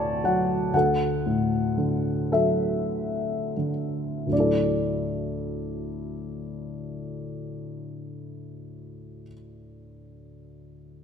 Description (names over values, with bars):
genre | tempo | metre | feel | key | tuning
classical, lyrical solo piano | 24-42 BPM (dotted quarters) | 6/8 | rubato | D major | A4 = 439 Hz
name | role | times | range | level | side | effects
dark upright piano | solo | 0.0-11.0 s | D2 to A5 | -25 LUFS | left 1 dB | none
room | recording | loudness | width
moderate scoring stage reverb, RT60 1.7 s | none | -24 LUFS | side -7 dB against mid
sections
0.7-4.3 A section; 4.3-8.8 B section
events
slowing down 0.0-4.3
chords
0.0 D; 4.3 Dadd9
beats
| 0.74 2.31 | 4.32 6.59